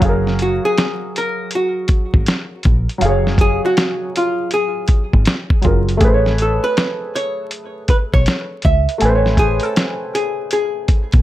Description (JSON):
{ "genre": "lo-fi hip hop", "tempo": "80 BPM", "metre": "4/4", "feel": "swing 62% on 16ths", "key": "unclear", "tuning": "A4 = 439 Hz", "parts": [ { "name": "warm upright piano", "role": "accompaniment", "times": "0.0-11.2 s", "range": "F#3 to G#5", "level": "-21 LUFS", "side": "right 1 dB", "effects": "cassette tape" }, { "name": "deep dub fingered electric bass", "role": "bass", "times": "0.0-11.2 s", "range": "F#1 to C#2", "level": "-17 LUFS", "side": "equal", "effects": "none" }, { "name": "lo-fi sampler-style drum kit", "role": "drums", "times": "0.0-11.2 s", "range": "hi-hat, kick drum, snare drum", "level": "-16 LUFS", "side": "equal", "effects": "vintage 12-bit sampler grit" }, { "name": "archtop guitar, miked and amplified", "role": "melody", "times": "0.4-11.2 s", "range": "E#4 to E5", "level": "-20 LUFS", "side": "equal", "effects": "tape echo" } ], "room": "light reverb", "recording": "vinyl crackle", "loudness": "-14 LUFS", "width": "side -14 dB against mid", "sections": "0.0-11.2 A section", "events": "none", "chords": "0.0 F#maj9; 6.0 Amaj9", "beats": "| 0.01 0.76 1.51 2.26 | 3.01 3.76 4.51 5.26 | 6.01 6.76 7.51 8.26 | 9.01 9.76 10.51" }